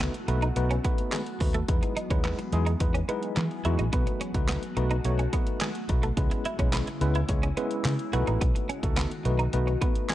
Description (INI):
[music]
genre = dance-pop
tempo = 107 BPM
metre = 4/4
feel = straight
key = unclear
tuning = A4 = 440 Hz
[part]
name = tine electric piano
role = accompaniment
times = 0.0-10.1 s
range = G#3 to C#5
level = -32 LUFS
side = left 1 dB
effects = overdrive, fast stereo tremolo, sidechain pumping
[part]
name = glassy FM pad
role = sustained chords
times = 0.1-10.1 s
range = C#3 to F#4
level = -36 LUFS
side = left 2 dB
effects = ensemble chorus, built-in reverb, sidechain pumping
[part]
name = twelve-string electric guitar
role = riff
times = 0.0-10.1 s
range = G#3 to F#4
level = -34 LUFS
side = right 4 dB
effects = analog chorus
[part]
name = vintage muted fingered electric bass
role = bass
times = 0.0-9.7 s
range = A1 to E3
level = -27 LUFS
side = equal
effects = sidechain pumping
[part]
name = pop drum kit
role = drums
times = 0.0-10.1 s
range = handclaps, hi-hat, kick drum, snare drum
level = -28 LUFS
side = equal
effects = none
[sound]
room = little or no reverb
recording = worn, warbling old tape, cassette tape, warbly pitch drift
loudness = -24 LUFS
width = side -14 dB against mid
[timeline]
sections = 0.0-10.1 A section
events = none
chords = 0.0 B7; 1.7 Emaj7; 3.9 B7; 6.2 C#m7; 8.1 B7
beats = 0.00 0.56 1.12 | 1.68 2.25 2.81 3.37 | 3.93 4.49 5.05 5.61 | 6.17 6.73 7.29 7.85 | 8.41 8.97 9.54 10.10